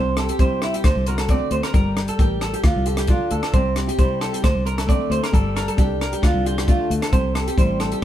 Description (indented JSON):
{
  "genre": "highlife guitar band",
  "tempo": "134 BPM",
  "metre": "4/4",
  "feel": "straight",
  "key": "D minor",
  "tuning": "A4 = 440 Hz",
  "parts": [
    { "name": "flamenco guitar", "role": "accompaniment", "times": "0.0-8.0 s", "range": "C3 to Bb4", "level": "-26 LUFS", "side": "left 2 dB", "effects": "none" },
    { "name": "electric guitar at the edge of break-up", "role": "arpeggios", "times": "0.0-8.0 s", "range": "E4 to D5", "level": "-24 LUFS", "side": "right 3 dB", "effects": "none" },
    { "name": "fingered electric bass", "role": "bass", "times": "0.0-7.9 s", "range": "G1 to C3", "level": "-24 LUFS", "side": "equal", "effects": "none" },
    { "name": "compact cocktail drum kit", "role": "drums", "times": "0.2-8.0 s", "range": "hi-hat, kick drum, rim click", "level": "-20 LUFS", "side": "equal", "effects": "none" }
  ],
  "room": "light reverb",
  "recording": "band playing live in one room",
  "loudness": "-17 LUFS",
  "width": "side -12 dB against mid",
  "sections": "0.0-8.0 A section",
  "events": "none",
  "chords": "0.0 C; 0.8 D7; 1.7 Gmadd9; 2.6 Dm; 3.5 C; 4.4 D7(no3); 5.3 Gmadd9; 6.2 Dm; 7.1 C"
}